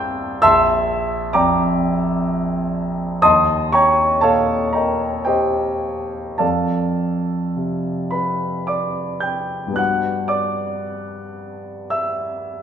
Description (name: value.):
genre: classical, impressionist solo piano.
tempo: 51-65 BPM.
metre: 3/4.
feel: rubato.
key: Bb lydian.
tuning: A4 = 441 Hz.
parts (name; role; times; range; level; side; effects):
warm concert grand piano; solo; 0.0-12.6 s; Bb1 to G6; -17 LUFS; equal; none.
room: wet recital hall reverb, RT60 1.7 s.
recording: minimal, uncompressed stereo recording.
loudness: -17 LUFS.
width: side -8 dB against mid.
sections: 0.0-9.8 A section; 9.8-12.6 B section.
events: none.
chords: 0.4 Bb6; 3.3 Eb9; 6.4 Fadd9; 9.8 Gmaj7.